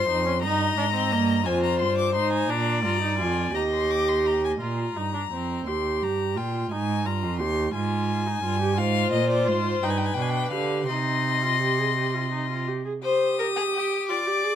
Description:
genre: classical, baroque-style fugue for string quartet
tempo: 57 BPM (dotted quarters)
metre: 6/8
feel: straight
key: C minor from 8.8 s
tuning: A4 = 440 Hz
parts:
  - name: warm violin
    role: melody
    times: 0.0-14.6 s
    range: C5 to Eb6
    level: -29 LUFS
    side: left 8 dB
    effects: none
  - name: rich violin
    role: second line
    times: 0.0-4.6, 8.8-14.6 s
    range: G4 to Eb5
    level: -27 LUFS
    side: left 4 dB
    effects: none
  - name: warm viola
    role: accompaniment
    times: 0.0-14.6 s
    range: Bb3 to Ab4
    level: -28 LUFS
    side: right 3 dB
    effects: none
  - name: rich cello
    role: bass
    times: 0.0-12.6 s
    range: Eb2 to D3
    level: -28 LUFS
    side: right 4 dB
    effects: none
room: light reverb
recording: close, detailed microphones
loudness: -22 LUFS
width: side -10 dB against mid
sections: 0.0-4.6 A section; 4.6-13.0 B section; 13.0-14.6 C section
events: none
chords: 0.4 Eb/G; 1.5 Fm; 2.5 Bb7; 3.5 Eb; 4.6 Gm; 5.7 Eb; 6.7 Ab; 7.7 Fm/Ab; 9.8 G7; 10.9 Cm; 13.0 Cm/G

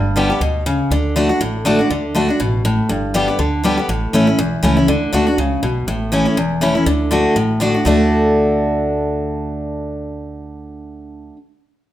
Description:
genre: bluegrass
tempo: 242 BPM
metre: 4/4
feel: swing 56% on 8ths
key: D major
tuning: A4 = 440 Hz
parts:
  - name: picked steel-string acoustic guitar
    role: accompaniment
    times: 0.0-11.4 s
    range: E2 to G4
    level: -16 LUFS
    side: equal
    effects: none
  - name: upright bass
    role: bass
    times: 0.0-11.3 s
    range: E1 to D2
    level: -23 LUFS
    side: right 1 dB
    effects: none
room: moderate large studio reverb, RT60 0.9 s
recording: none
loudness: -14 LUFS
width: side -13 dB against mid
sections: 0.0-5.9 A section; 5.9-7.9 B section; 7.9-9.8 C section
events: none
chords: 0.0 G; 0.9 D; 2.9 G; 3.9 A; 4.9 D; 5.9 A; 6.9 D

